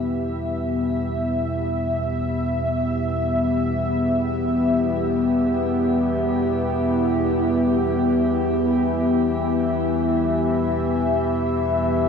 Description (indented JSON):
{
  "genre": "ambient",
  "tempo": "free time",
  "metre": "none",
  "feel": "none",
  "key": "unclear",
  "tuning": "A4 = 440 Hz",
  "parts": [
    { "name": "dark analog pad", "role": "sustained chords", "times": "0.0-12.1 s", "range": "B3 to E5", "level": "-20 LUFS", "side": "left 1 dB", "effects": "chorus, shimmer reverb" },
    { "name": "gamelan-type bronze metallophone", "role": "arpeggios", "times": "0.0-12.1 s", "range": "none", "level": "barely audible", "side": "none", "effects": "none" },
    { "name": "analog drone", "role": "drone", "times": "0.0-12.1 s", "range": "E2 to E3", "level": "-26 LUFS", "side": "left 1 dB", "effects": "chorus" }
  ],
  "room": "wet cathedral reverb, RT60 6.8 s",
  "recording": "cassette tape, small room ambience",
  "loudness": "-19 LUFS",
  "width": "side -6 dB against mid",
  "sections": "0.0-12.1 A section",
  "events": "fade-in on synth drone 0.0-12.1",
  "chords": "0.0 Em"
}